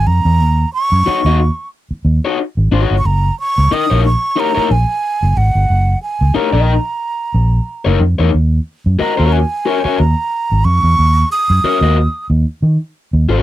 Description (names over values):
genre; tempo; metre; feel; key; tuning
funk; 91 BPM; 4/4; swing 56% on 16ths; Eb minor; A4 = 441 Hz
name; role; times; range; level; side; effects
breathy hollow jazz flute; melody; 0.0-12.3 s; Gb5 to Eb6; -17 LUFS; right 3 dB; none
vintage muted fingered electric bass; bass; 0.0-13.4 s; Gb1 to Eb3; -12 LUFS; equal; none
raw garage guitar; accompaniment; 1.1-13.4 s; Eb4 to Eb5; -16 LUFS; left 7 dB; overdrive
room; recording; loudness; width
little or no reverb; dry, close 1970s-style studio recording; -12 LUFS; side -14 dB against mid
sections
0.0-13.4 A section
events
none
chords
0.0 Ebm7; 3.0 Gb6; 8.3 Ebm7